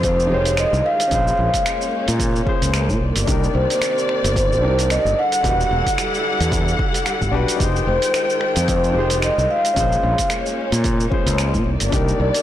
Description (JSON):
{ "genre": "sunset chillout", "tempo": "111 BPM", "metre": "4/4", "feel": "swing 57% on 16ths", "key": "F minor", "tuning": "A4 = 435 Hz", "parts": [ { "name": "vibraphone with soft mallets", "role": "melody", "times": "0.0-12.4 s", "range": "C5 to F#5", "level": "-20 LUFS", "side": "left 1 dB", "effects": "ping-pong delay" }, { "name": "warm grand piano", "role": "accompaniment", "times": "0.0-12.4 s", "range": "Db4 to C5", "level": "-26 LUFS", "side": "moving between left 6 dB and right 5 dB", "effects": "auto-pan, ping-pong delay" }, { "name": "dark studio string section", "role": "sustained chords", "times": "0.0-12.4 s", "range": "C3 to G5", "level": "-25 LUFS", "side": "equal", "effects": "none" }, { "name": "fretless electric bass", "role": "bass", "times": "0.0-12.3 s", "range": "E1 to Bb2", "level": "-20 LUFS", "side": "equal", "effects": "none" }, { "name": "dusty soul sampler-style drum kit", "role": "drums", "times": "0.0-12.4 s", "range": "finger snaps, hi-hat, shaker", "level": "-26 LUFS", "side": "right 2 dB", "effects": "soft clipping on snare" }, { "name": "electronic kick drum", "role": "drums", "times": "0.0-12.0 s", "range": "none", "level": "-24 LUFS", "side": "equal", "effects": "none" } ], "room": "light reverb", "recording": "blown-out, overdriven recording, overdrive", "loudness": "-16 LUFS", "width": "side -12 dB against mid", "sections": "0.0-12.4 A section", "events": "none", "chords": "0.0 Fm9; 1.1 Bbm9; 3.0 Cm9; 5.2 Em9; 7.6 Fm9; 9.8 Bbm9; 11.7 Cm9" }